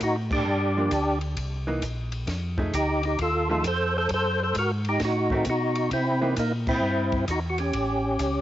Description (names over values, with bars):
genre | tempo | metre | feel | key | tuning
soul jazz organ trio | 132 BPM | 4/4 | swing 66% on 8ths | unclear | A4 = 441 Hz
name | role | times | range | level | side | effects
percussive tonewheel organ | melody | 0.0-8.4 s | Bb3 to C5 | -24 LUFS | equal | slow rotary speaker, overdrive, chorus vibrato, cassette tape
mellow tonewheel organ | bass | 0.0-8.4 s | A1 to C3 | -28 LUFS | equal | slow rotary speaker
compact cocktail drum kit | drums | 0.0-8.3 s | crash cymbal, hi-hat, kick drum, ride cymbal, snare drum | -34 LUFS | equal | cassette tape
vintage hollow-body jazz guitar | accompaniment | 0.8-6.4 s | D#3 to G#4 | -32 LUFS | right 1 dB | none
room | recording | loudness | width
light reverb | home recording on cassette, nothing above 7.6 kHz | -23 LUFS | side -13 dB against mid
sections
0.0-8.4 A section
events
band accent 0.2, 6.6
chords
0.5 Gm7; 1.4 C7#9; 2.3 F7#9; 4.1 F#dim7; 5.9 C7#9; 7.7 A7